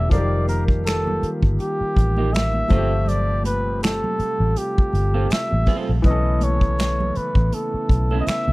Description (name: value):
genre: R&B, neo-soul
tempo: 81 BPM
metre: 4/4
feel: swing 57% on 16ths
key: unclear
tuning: A4 = 441 Hz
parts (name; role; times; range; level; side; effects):
- warm flugelhorn; melody; 0.0-8.5 s; G4 to E5; -25 LUFS; equal; none
- clear baby grand piano; accompaniment; 0.0-8.5 s; Eb3 to A4; -29 LUFS; left 4 dB; none
- percussive tonewheel organ; sustained chords; 0.0-8.5 s; C3 to F4; -30 LUFS; right 1 dB; fast rotary speaker, chorus vibrato
- vintage muted fingered electric bass; bass; 0.0-8.5 s; F1 to C#2; -21 LUFS; equal; none
- unplugged drum kit; drums; 0.1-8.5 s; finger snaps, hi-hat, kick drum, snare drum; -19 LUFS; equal; none
- congas; percussion; 0.1-8.5 s; none; -32 LUFS; right 1 dB; none
- electric guitar through a small old amp; second line; 2.2-8.3 s; Bb3 to A4; -30 LUFS; right 5 dB; spring reverb
room: little or no reverb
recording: dry, close 1970s-style studio recording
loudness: -18 LUFS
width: side -21 dB against mid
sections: 0.0-8.5 A section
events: none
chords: 0.1 F9sus4; 2.7 G9sus4; 6.0 B9sus4